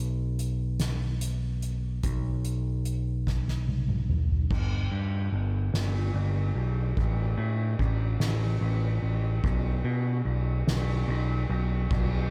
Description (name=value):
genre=post-rock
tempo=49 BPM (dotted quarters)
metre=6/8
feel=straight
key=G major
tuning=A4 = 440 Hz
part: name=picked electric bass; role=bass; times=0.0-12.3 s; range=G1 to B2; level=-29 LUFS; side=equal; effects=none
part: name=soft-mallet drum kit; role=drums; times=0.4-12.1 s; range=crash cymbal, hi-hat, kick drum, ride cymbal, snare drum, toms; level=-33 LUFS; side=equal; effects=none
room=little or no reverb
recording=none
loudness=-28 LUFS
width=mono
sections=0.0-4.5 A section; 4.5-12.3 B section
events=drum fill 3.3-4.5; build-up 4.5-12.3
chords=none